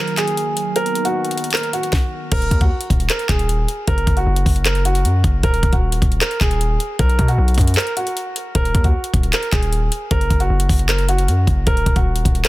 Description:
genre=hip hop, trap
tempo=154 BPM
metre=4/4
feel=half-time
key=Eb minor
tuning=A4 = 439 Hz
part: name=felt-muted upright piano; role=melody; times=0.0-12.5 s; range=F#4 to Bb4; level=-22 LUFS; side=right 1 dB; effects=low-pass filter, tape echo
part: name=sweeping resonant pad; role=sustained chords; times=0.0-1.9 s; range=Eb3 to Gb4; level=-26 LUFS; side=right 1 dB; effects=chorus, low-pass filter
part: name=trap drum kit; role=drums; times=0.1-12.5 s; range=crash cymbal, handclaps, hi-hat, kick drum, snare drum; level=-18 LUFS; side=equal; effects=none
part: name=hard-hitting 808-style bass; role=bass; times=2.3-12.4 s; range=Eb1 to B2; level=-18 LUFS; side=equal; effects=none
room=little or no reverb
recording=dense, heavily limited modern master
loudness=-15 LUFS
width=side -18 dB against mid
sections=0.0-2.3 A section; 2.3-12.5 B section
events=break 7.8-8.6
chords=0.0 Ebm; 0.8 Bmaj7; 2.3 Ebm; 3.9 Gb; 5.4 Ebm; 7.0 B5; 8.6 Ebm; 10.1 Gb; 11.7 Ebm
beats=0.37 | 0.76 1.15 1.54 1.93 | 2.32 2.71 3.10 3.49 | 3.88 4.26 4.66 5.04 | 5.43 5.82 6.21 6.60 | 6.99 7.38 7.77 8.16 | 8.55 8.94 9.33 9.72 | 10.11 10.50 10.89 11.28 | 11.67 12.06 12.45

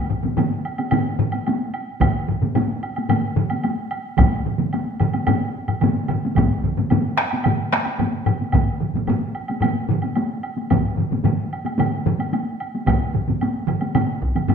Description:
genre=japanese traditional, taiko drum ensemble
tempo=110 BPM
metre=4/4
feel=straight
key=none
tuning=none
part: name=taiko ensemble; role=percussion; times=0.1-14.5 s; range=none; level=-24 LUFS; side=left 4 dB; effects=none
part: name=taiko ensemble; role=percussion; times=0.1-14.5 s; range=none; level=-25 LUFS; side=right 6 dB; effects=none
part: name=taiko ensemble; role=percussion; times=0.2-14.5 s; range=none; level=-24 LUFS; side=left 1 dB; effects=none
part: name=woodblock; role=percussion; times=0.4-14.5 s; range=none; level=-29 LUFS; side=right 4 dB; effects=none
part: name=taiko ensemble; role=percussion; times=2.0-14.5 s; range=none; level=-22 LUFS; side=equal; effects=none
room=wet recital hall reverb, RT60 1.3 s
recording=minimal, uncompressed stereo recording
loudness=-19 LUFS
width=side -7 dB against mid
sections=0.0-14.5 A section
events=none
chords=none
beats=0.38 0.93 1.47 | 2.01 2.56 3.10 3.65 | 4.19 4.74 5.28 5.82 | 6.37 6.91 7.45 8.00 | 8.54 9.08 9.62 10.16 | 10.71 11.25 11.79 12.33 | 12.87 13.41 13.95 14.49

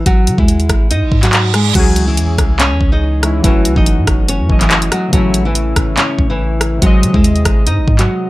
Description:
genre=hip hop, drill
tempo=142 BPM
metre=4/4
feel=half-time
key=C# harmonic minor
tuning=A4 = 440 Hz
part: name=nylon-string guitar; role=melody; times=0.0-8.3 s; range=E3 to D#5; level=-17 LUFS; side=equal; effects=low-pass filter
part: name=long sustained 808-style bass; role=bass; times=0.0-8.1 s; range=F#1 to D#3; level=-16 LUFS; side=equal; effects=none
part: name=drill drum kit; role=drums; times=0.1-8.1 s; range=crash cymbal, handclaps, hi-hat, kick drum, rim click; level=-13 LUFS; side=equal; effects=none
part: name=reverse cymbal and impact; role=sound effects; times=1.1-3.4 s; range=none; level=-23 LUFS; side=right 6 dB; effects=none
part: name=warbly lo-fi synth keys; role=accompaniment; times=1.7-8.3 s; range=B#2 to D#5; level=-20 LUFS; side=left 2 dB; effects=chorus, low-pass filter
room=little or no reverb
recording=none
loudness=-10 LUFS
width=side -18 dB against mid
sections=0.0-1.8 A section; 1.8-8.3 B section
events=reverse cymbal 1.1-1.8; impact 1.8-3.4; break 8.1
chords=0.1 G#5; 1.8 C#m; 3.4 F#m7; 5.1 A; 6.8 G#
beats=| 0.06 0.48 0.91 1.33 | 1.75 2.17 2.60 3.02 | 3.44 3.86 4.29 4.71 | 5.13 5.55 5.98 6.40 | 6.82 7.24 7.67 8.09

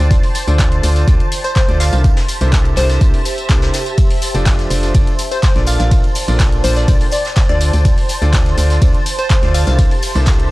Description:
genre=piano house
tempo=124 BPM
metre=4/4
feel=straight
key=unclear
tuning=A4 = 440 Hz
part: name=analog string pad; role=sustained chords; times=0.0-10.5 s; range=C5 to A5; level=-25 LUFS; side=right 1 dB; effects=ensemble chorus, sidechain pumping
part: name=clear concert grand piano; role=riff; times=0.0-10.5 s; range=Bb2 to D5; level=-22 LUFS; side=right 1 dB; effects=sidechain pumping
part: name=organ-like FM bass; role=bass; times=0.0-10.5 s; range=F1 to D2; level=-15 LUFS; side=equal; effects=sidechain pumping
part: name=punchy analog drum machine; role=drums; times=0.0-10.5 s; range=handclaps, hi-hat, ride cymbal, tambourine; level=-24 LUFS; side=equal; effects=none
part: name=granular cloud pad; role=texture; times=0.0-10.5 s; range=G4 to A5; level=-29 LUFS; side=equal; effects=built-in reverb, sidechain pumping
part: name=electronic kick drum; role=drums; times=0.1-10.4 s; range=none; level=-13 LUFS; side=equal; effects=none
part: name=vintage brush drum kit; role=drums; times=0.1-10.4 s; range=hi-hat, snare drum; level=-31 LUFS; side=left 1 dB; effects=none
part: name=tambourine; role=percussion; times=0.1-10.5 s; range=none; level=-32 LUFS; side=left 3 dB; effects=none
part: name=glassy wavetable pluck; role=melody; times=1.4-9.7 s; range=C5 to F5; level=-23 LUFS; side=left 1 dB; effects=chorus, tape echo
room=little or no reverb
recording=dry, gritty hardware recording, cassette tape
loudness=-11 LUFS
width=side -19 dB against mid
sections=0.0-10.5 A section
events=none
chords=0.0 Dm7; 2.0 C13; 4.0 F6; 5.7 Bbmaj7; 7.6 Dm7; 9.8 C13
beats=| 0.11 0.59 1.08 1.56 | 2.04 2.53 3.01 3.50 | 3.98 4.46 4.95 5.43 | 5.91 6.40 6.88 7.37 | 7.85 8.33 8.82 9.30 | 9.79 10.27

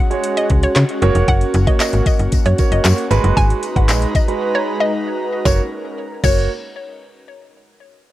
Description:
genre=dance-pop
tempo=115 BPM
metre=4/4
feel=straight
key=F# major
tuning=A4 = 441 Hz
part: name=hollow square pluck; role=melody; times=0.0-6.5 s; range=C#5 to G#5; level=-23 LUFS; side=equal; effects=chorus, sidechain pumping, tape echo
part: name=airy breathy pad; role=sustained chords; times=0.0-5.7 s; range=G#3 to A#5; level=-24 LUFS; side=left 1 dB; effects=chorus, sidechain pumping, cassette tape
part: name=warm concert grand piano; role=accompaniment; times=0.1-6.5 s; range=G#3 to C#5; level=-21 LUFS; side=right 6 dB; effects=cassette tape
part: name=smooth R&B drum kit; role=drums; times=0.1-6.4 s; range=crash cymbal, handclaps, hi-hat, kick drum, snare drum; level=-17 LUFS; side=equal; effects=cassette tape
part: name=slap-like FM bass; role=bass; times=0.5-6.5 s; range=E#1 to C#3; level=-16 LUFS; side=equal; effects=sidechain pumping
part: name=tambourine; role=percussion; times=1.5-6.5 s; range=none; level=-30 LUFS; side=left 12 dB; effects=none
room=light reverb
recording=home recording on cassette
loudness=-14 LUFS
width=side -15 dB against mid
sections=0.0-5.5 A section; 5.5-7.5 B section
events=break 4.4-5.5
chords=0.0 C#sus4; 1.0 F#; 3.1 G#m7; 5.5 F#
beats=0.24 0.76 | 1.28 1.80 2.33 2.85 | 3.37 3.89 4.41 4.93 | 5.46 5.98

